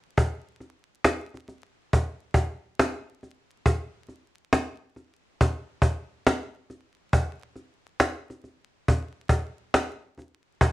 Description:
hip hop; 69 BPM; 4/4; swing 66% on 16ths
cajon; drums; 0.2-10.7 s; -22 LUFS; equal; vintage 12-bit sampler grit
moderate studio reverb, RT60 0.5 s; vinyl crackle; -24 LUFS; side -18 dB against mid
0.0-10.6 A section

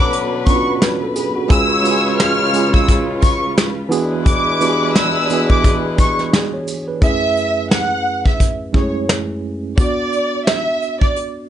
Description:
hip hop, boom-bap hip-hop; 87 BPM; 4/4; swing 59% on 16ths; F# minor; A4 = 437 Hz
warm studio violin section; melody; 0.0-11.1 s; C#5 to E#6; -19 LUFS; equal; high-pass filter, low-pass filter, slapback echo
tine electric piano; accompaniment; 0.0-11.5 s; F#2 to C#5; -20 LUFS; right 3 dB; medium stereo tremolo, cassette tape, high-pass filter, low-pass filter
warm studio string section; sustained chords; 0.0-7.0 s; E2 to B4; -25 LUFS; left 2 dB; high-pass filter, low-pass filter
clear horn section; stabs; 0.0-6.6 s; F#3 to C#5; -23 LUFS; left 4 dB; high-pass filter, low-pass filter, slapback echo
soft brush drum kit; drums; 0.1-11.3 s; hi-hat, kick drum, shaker, snare drum; -15 LUFS; equal
tambourine; percussion; 0.5-6.9 s; -34 LUFS; right 5 dB
light reverb; nothing above 10.4 kHz; -14 LUFS; side -10 dB against mid
0.0-7.0 A section; 7.0-11.5 B section
0.0 Bmadd9; 1.5 C#; 3.9 E7; 7.0 F#m7; 9.8 Bm

